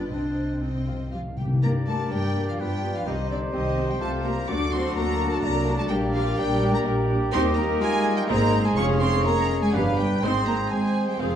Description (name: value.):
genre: quick classical-period movement for symphony orchestra.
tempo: 125 BPM.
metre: 3/4.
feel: rubato.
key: G minor.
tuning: A4 = 439 Hz.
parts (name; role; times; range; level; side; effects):
warm chamber violin section; melody; 0.0-11.4 s; D5 to D6; -31 LUFS; right 2 dB; none.
warm clarinet; second line; 0.0-11.4 s; C4 to Ab4; -32 LUFS; equal; none.
warm symphonic violin section; second line; 0.0-11.4 s; D4 to Eb5; -36 LUFS; left 2 dB; none.
rich chamber viola section; accompaniment; 0.0-11.4 s; A3 to Ab4; -34 LUFS; right 1 dB; none.
dark chamber cello section; bass; 0.0-11.4 s; C3 to D4; -29 LUFS; equal; none.
warm studio double bass section; bass; 0.0-11.4 s; F1 to G2; -28 LUFS; equal; none.
timpani; percussion; 0.1-1.6 s; C3; -27 LUFS; left 2 dB; none.
mellow hollow silver concert flute; second line; 1.1-11.4 s; D5 to D6; -34 LUFS; left 2 dB; none.
clear oboe; second line; 1.6-11.4 s; B4 to Eb5; -37 LUFS; equal; none.
warm bassoon; accompaniment; 1.6-11.4 s; Bb3 to G4; -33 LUFS; right 2 dB; none.
mellow French horn section; sustained chords; 1.6-11.4 s; F3 to Eb4; -31 LUFS; equal; none.
mellow trumpet section; stabs; 1.6-11.4 s; A4 to Db5; -32 LUFS; left 2 dB; none.
room: wet stone room reverb, RT60 1.4 s.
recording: dark, warm production.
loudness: -21 LUFS.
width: side -9 dB against mid.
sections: 0.0-1.6 A section; 1.6-11.4 B section.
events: timpani fill 0.1-1.6.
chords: 0.1 Cm; 1.6 Gm; 2.6 G7; 3.1 Cm; 4.5 D; 5.4 D7/C; 5.9 Gm/Bb; 7.3 Eb; 8.3 Ab; 8.8 Db/F; 9.7 G7; 10.2 Ab.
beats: | 0.10 0.61 1.12 | 1.63 2.12 2.60 | 3.07 3.54 4.01 | 4.49 4.97 5.45 | 5.91 6.38 6.86 | 7.33 7.81 8.29 | 8.77 9.26 9.74 | 10.23 10.71 11.20.